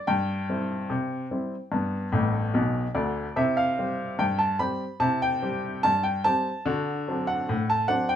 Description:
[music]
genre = ragtime piano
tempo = 73 BPM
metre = 2/4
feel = straight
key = C major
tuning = A4 = 439 Hz
[part]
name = warm upright piano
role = solo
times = 0.0-8.2 s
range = A1 to B5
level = -24 LUFS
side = equal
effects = none
[sound]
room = moderate studio reverb, RT60 0.5 s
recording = minimal, uncompressed stereo recording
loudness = -24 LUFS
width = side -9 dB against mid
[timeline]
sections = 0.0-8.2 A section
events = upright piano fill 2.1-3.4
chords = 0.1 C/G; 1.7 G; 3.4 C; 6.7 D7

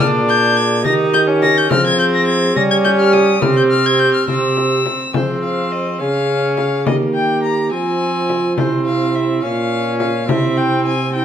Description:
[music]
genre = classical, renaissance-style consort dance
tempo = 70 BPM (dotted quarters)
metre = 6/8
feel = straight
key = F minor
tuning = A4 = 441 Hz
[part]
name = warm violin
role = melody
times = 0.0-11.2 s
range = C5 to Bb6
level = -19 LUFS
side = left 3 dB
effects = none
[part]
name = mellow hollow tenor recorder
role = second line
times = 0.0-11.2 s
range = E4 to Ab4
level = -19 LUFS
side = right 3 dB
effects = none
[part]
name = warm viola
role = accompaniment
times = 0.0-11.2 s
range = Bb3 to Eb4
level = -20 LUFS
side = left 1 dB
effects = none
[part]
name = dark trombone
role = bass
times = 0.0-11.2 s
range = Bb2 to G3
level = -20 LUFS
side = right 1 dB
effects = none
[part]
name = frame drum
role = percussion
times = 0.8-10.6 s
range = none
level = -22 LUFS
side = left 4 dB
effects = none
[sound]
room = wet stone room reverb, RT60 1.3 s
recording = minimal, uncompressed stereo recording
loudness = -13 LUFS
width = side -9 dB against mid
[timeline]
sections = 0.0-5.1 A section; 5.1-11.2 B section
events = none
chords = 0.0 Bb7; 0.8 Eb; 1.7 Fm; 2.6 G(b5, no3); 3.4 C5; 5.1 Fm; 6.0 Db; 6.9 Eb; 7.7 Fm; 8.6 C; 9.4 Bbm; 10.3 C

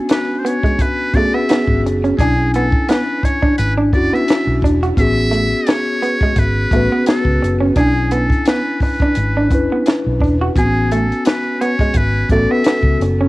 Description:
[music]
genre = R&B, neo-soul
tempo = 86 BPM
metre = 4/4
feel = swing 55% on 16ths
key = unclear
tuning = A4 = 440 Hz
[part]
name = mellow tine electric piano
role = accompaniment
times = 0.0-13.3 s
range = B3 to G#5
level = -19 LUFS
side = left 1 dB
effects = slow stereo tremolo
[part]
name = trumpet with metal mute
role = melody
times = 0.1-13.0 s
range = G#4 to E5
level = -21 LUFS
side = equal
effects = cassette tape
[part]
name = electric guitar through a small old amp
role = second line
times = 0.1-13.3 s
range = G#3 to F#4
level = -20 LUFS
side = right 2 dB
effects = none
[part]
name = compact cocktail drum kit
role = drums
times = 0.1-13.2 s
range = hi-hat, kick drum, snare drum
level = -17 LUFS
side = equal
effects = cassette tape
[part]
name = vintage muted fingered electric bass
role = bass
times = 1.7-13.3 s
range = E1 to C#2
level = -18 LUFS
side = equal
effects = none
[sound]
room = small room ambience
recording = home recording on cassette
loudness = -13 LUFS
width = side -19 dB against mid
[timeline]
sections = 0.0-13.3 A section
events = none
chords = 0.0 Amaj9 (rootless); 2.2 Bm69; 5.0 Amaj9; 7.8 Bm69; 10.6 Amaj9

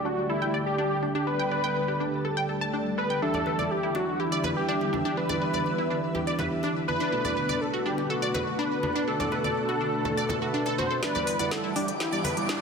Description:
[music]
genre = progressive house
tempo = 123 BPM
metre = 4/4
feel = straight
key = E minor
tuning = A4 = 440 Hz
[part]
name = wide unison lead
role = melody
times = 0.0-12.3 s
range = E4 to C5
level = -29 LUFS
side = left 1 dB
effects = ping-pong delay
[part]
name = shimmering ambient pad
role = sustained chords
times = 0.0-12.6 s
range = D3 to A4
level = -34 LUFS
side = left 1 dB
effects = chorus, built-in reverb
[part]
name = chorused polysynth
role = stabs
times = 0.0-12.6 s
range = B2 to F#5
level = -32 LUFS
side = right 2 dB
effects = cassette tape
[part]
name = wide unison pluck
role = arpeggios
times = 0.1-12.5 s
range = D4 to A5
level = -31 LUFS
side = equal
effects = phaser, ping-pong delay
[part]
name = congas and bongos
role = percussion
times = 3.3-12.3 s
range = none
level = -37 LUFS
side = equal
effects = none
[part]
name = deep house drum kit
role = drums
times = 11.0-12.6 s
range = hi-hat, snare drum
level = -33 LUFS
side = left 1 dB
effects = high-pass filter on snare, studio reverb, high-pass filter on hats
[part]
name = riser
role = sound effects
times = 11.6-12.6 s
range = none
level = -36 LUFS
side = equal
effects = none
[part]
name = twinkling granular texture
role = texture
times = 11.7-12.6 s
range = D6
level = -40 LUFS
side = left 2 dB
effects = built-in reverb
[sound]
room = moderate lush hall reverb, RT60 2.2 s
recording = none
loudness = -25 LUFS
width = side -5 dB against mid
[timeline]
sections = 0.0-11.0 A section; 11.0-12.6 B section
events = filter sweep on ambient pad 0.0-11.0; build-up 11.0-12.6; drum fill 11.0-12.6; filter sweep on analog polysynth 11.0-12.6; riser 11.6-12.6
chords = 0.0 Dsus4; 3.2 Em7; 7.1 Bm7; 11.0 Em7

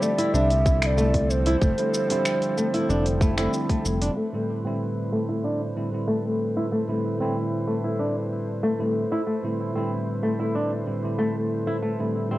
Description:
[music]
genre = organic downtempo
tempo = 94 BPM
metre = 4/4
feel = straight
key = A minor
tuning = A4 = 441 Hz
[part]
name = hollow bass bansuri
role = melody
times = 0.0-3.5 s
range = C5 to E5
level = -26 LUFS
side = right 1 dB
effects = cassette tape, analog delay
[part]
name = tine electric piano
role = accompaniment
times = 0.0-12.4 s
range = A2 to E4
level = -28 LUFS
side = right 1 dB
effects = wide subtle chorus, sidechain pumping, cassette tape, analog delay
[part]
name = warm analog pad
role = sustained chords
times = 0.0-12.4 s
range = F3 to C5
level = -34 LUFS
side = left 1 dB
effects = chorus, vintage 12-bit sampler grit, sidechain pumping, cassette tape
[part]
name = flamenco guitar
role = arpeggios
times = 0.0-12.4 s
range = A3 to E4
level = -26 LUFS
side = left 1 dB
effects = vintage 12-bit sampler grit, low-pass filter, cassette tape, analog delay
[part]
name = deep house drum kit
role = drums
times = 0.0-4.1 s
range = finger snaps, hi-hat, shaker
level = -31 LUFS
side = equal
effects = cassette tape
[part]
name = round analog bass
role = bass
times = 0.3-4.1 s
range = F1 to C2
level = -24 LUFS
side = equal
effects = sidechain pumping
[part]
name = electronic kick drum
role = drums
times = 0.7-3.8 s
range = none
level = -22 LUFS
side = equal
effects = cassette tape
[sound]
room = moderate spring reverb, RT60 2.4 s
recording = home recording on cassette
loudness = -22 LUFS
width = side -16 dB against mid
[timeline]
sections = 0.0-4.2 A section; 4.2-12.4 B section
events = filter sweep on nylon-string guitar 4.2-12.4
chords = 0.0 Fmaj7; 4.2 Am7

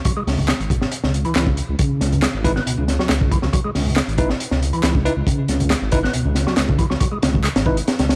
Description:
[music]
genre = breakbeat, breaks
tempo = 138 BPM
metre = 4/4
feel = straight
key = C# minor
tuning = A4 = 441 Hz
[part]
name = crunchy breakbeat drum kit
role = drums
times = 0.0-8.2 s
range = hi-hat, kick drum, snare drum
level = -22 LUFS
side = equal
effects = none
[part]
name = percussive tonewheel organ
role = riff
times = 0.1-7.5 s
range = B2 to B3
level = -27 LUFS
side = equal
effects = chorus vibrato, fast rotary speaker, tube saturation, vintage 12-bit sampler grit, tape echo
[part]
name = congas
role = percussion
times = 0.1-8.1 s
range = none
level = -32 LUFS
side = equal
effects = none
[part]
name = dark detuned saw bass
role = bass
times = 0.3-8.2 s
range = G#1 to C#2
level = -24 LUFS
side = equal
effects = none
[part]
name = electronic handclaps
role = drums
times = 0.5-7.5 s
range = none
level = -31 LUFS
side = equal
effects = overdrive
[part]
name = bell-like tine electric piano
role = stabs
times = 2.4-7.8 s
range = D#4 to B4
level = -28 LUFS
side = equal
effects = vintage 12-bit sampler grit, tape echo
[sound]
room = small room reverb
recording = dry, gritty hardware recording, cassette tape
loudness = -19 LUFS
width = mono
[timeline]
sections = 0.0-8.2 A section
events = none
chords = 0.0 C#m7

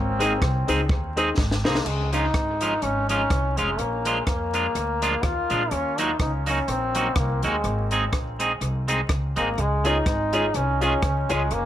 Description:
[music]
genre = ska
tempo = 124 BPM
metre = 4/4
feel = swing 57% on 8ths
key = Db major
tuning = A4 = 440 Hz
[part]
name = brilliant trombone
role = melody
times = 0.0-11.7 s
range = Ab3 to F4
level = -26 LUFS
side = left 1 dB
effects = dub echo, plate reverb
[part]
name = upright bass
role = bass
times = 0.0-11.7 s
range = F1 to F2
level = -27 LUFS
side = equal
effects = none
[part]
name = clean electric guitar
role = accompaniment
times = 0.2-11.4 s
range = F3 to Ab4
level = -27 LUFS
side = right 2 dB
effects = dub echo, plate reverb
[part]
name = dark upright piano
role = stabs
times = 0.2-1.8, 9.8-11.4 s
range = Eb4 to Db5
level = -30 LUFS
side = left 4 dB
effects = plate reverb
[part]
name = compact cocktail drum kit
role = drums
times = 0.2-11.6 s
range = crash cymbal, hi-hat, kick drum, rim click, snare drum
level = -28 LUFS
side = equal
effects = dub echo
[sound]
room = moderate small room reverb, RT60 0.5 s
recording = vinyl crackle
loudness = -21 LUFS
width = side -11 dB against mid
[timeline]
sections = 0.0-1.9 A section; 1.9-11.7 B section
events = drum fill 1.4-1.9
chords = 0.0 Ab; 1.9 Db; 3.8 Bb7; 5.7 Ebm; 7.6 Ab; 9.6 Db

